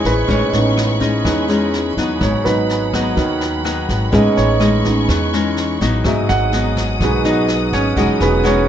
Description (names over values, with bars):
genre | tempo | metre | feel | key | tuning
bossa nova | 125 BPM | 4/4 | straight | unclear | A4 = 441 Hz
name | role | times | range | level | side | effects
nylon-string guitar | accompaniment | 0.0-8.7 s | G#2 to F#4 | -19 LUFS | left 3 dB | none
warm concert grand piano | accompaniment | 0.0-8.7 s | F#3 to F#5 | -18 LUFS | right 3 dB | none
dark studio string section | sustained chords | 0.0-8.7 s | G#4 to D#6 | -25 LUFS | equal | none
upright bass | bass | 0.0-8.7 s | E1 to E2 | -20 LUFS | equal | none
jazz brush drum kit | drums | 0.0-8.6 s | kick drum, rim click, snare drum | -25 LUFS | equal | none
room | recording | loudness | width
light reverb | nothing above 7.9 kHz | -14 LUFS | side -10 dB against mid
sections
0.0-8.7 A section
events
grand piano solo 0.0-8.7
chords
0.0 Amaj9#11; 2.2 G#m7; 4.1 Amaj9#11; 6.0 G#m7; 8.0 Emaj9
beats
| 0.29 0.77 1.25 1.73 | 2.21 2.69 3.17 3.65 | 4.13 4.61 5.09 5.57 | 6.05 6.53 7.01 7.49 | 7.97 8.45